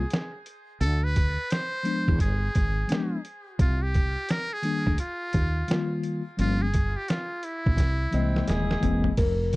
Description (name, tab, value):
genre	hip hop, jazz-hop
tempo	86 BPM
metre	4/4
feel	swing 63% on 16ths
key	unclear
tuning	A4 = 440 Hz
part	trumpet with metal mute	melody	0.0-8.8 s	E4 to C5	-32 LUFS	equal	tape echo
part	mellow tine electric piano	accompaniment	0.0-9.6 s	Eb3 to D#5	-27 LUFS	left 3 dB	medium stereo tremolo
part	woody fretless electric bass	bass	0.0-9.6 s	D#1 to E2	-26 LUFS	equal	none
part	trip hop sampler-style drum kit	drums	0.1-9.6 s	crash cymbal, hi-hat, kick drum, snare drum, toms	-26 LUFS	equal	none
part	breathy tenor saxophone	second line	8.1-9.2 s	C4 to G#4	-33 LUFS	equal	none
room	little or no reverb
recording	dry, close 1970s-style studio recording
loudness	-24 LUFS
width	side -21 dB against mid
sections	0.0-9.2 A section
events	drum fill 7.8-9.2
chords	0.0 N.C.; 0.8 Dm7; 2.2 G7b9; 3.6 Cm9; 6.4 Gm7b5; 7.8 C7alt